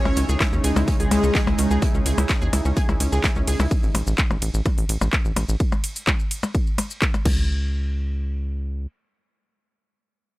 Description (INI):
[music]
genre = melodic techno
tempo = 127 BPM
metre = 4/4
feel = straight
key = C# minor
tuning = A4 = 437 Hz
[part]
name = mellow synth brass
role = melody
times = 0.0-1.4 s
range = G#3 to C#4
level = -28 LUFS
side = left 2 dB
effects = chorus, tape echo
[part]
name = soft supersaw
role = second line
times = 0.0-1.4 s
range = G#4 to C#5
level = -36 LUFS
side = equal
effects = sidechain pumping, analog delay
[part]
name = evolving wavetable pad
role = sustained chords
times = 0.1-3.7 s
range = C#3 to D#4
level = -28 LUFS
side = right 1 dB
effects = chorus, built-in reverb, vintage 12-bit sampler grit, sidechain pumping
[part]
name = analog pluck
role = arpeggios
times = 0.0-3.7 s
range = C#4 to G#5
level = -30 LUFS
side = right 1 dB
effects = chorus, sidechain pumping, analog delay
[part]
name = tight sequencer bass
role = bass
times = 0.1-8.9 s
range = A1 to D#2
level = -22 LUFS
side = equal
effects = sidechain pumping
[part]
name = techno drum kit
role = drums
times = 0.1-7.4 s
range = crash cymbal, handclaps, hi-hat, percussion blips, ride cymbal, shaker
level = -26 LUFS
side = left 1 dB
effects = sidechain pumping on perc, sidechain pumping on hats, sidechain pumping on cymbals
[part]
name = loose indie drum kit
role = drums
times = 0.2-3.6 s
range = hi-hat, snare drum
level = -38 LUFS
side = right 2 dB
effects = none
[part]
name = electronic kick drum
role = drums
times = 0.4-7.4 s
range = none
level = -22 LUFS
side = equal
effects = none
[sound]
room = little or no reverb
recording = none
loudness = -19 LUFS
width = side -18 dB against mid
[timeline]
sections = 0.0-7.5 A section; 7.5-10.4 B section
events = drop 0.0-7.5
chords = 0.0 C#m; 3.7 N.C.